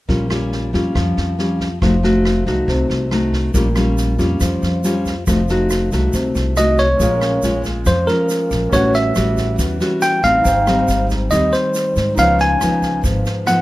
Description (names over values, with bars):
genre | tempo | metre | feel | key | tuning
bossa nova | 139 BPM | 4/4 | straight | Bb minor from 7.0 s | A4 = 440 Hz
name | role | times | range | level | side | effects
nylon-string guitar | accompaniment | 0.1-13.6 s | Ab2 to Gb4 | -18 LUFS | left 1 dB | none
upright bass | bass | 0.1-13.2 s | F1 to Ab2 | -20 LUFS | equal | none
open jazz drum kit | drums | 0.1-13.6 s | kick drum, rim click, snare drum | -25 LUFS | equal | none
egg shaker | percussion | 3.5-13.6 s | none | -34 LUFS | right 5 dB | none
bell-like tine electric piano | melody | 6.6-13.6 s | Bb4 to Ab5 | -16 LUFS | equal | none
warm grand piano | accompaniment | 7.0-13.6 s | Db4 to Ab5 | -28 LUFS | right 3 dB | none
room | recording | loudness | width
light reverb | lossy compression artefacts | -14 LUFS | side -17 dB against mid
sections
0.1-7.0 A section; 7.0-13.6 B section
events
none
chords
0.1 Bbm6; 1.8 F7b9; 3.5 Bbm6; 5.3 F7b9; 7.0 Bbm7; 8.7 A13; 10.5 Abmaj7; 12.2 Db9